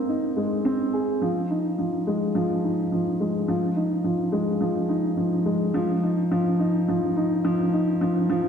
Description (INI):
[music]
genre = electronica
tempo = 106 BPM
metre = 4/4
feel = straight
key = unclear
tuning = A4 = 440 Hz
[part]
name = dark upright piano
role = solo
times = 0.0-8.5 s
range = F3 to Ab4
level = -22 LUFS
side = equal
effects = none
[sound]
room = wet scoring stage reverb, RT60 1.7 s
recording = none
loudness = -22 LUFS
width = side -7 dB against mid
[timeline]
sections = 0.0-8.5 A section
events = build-up 0.0-8.5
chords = none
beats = 0.09 0.66 | 1.23 1.79 2.36 2.92 | 3.49 4.05 4.62 5.19 | 5.75 6.32 6.88 7.45 | 8.02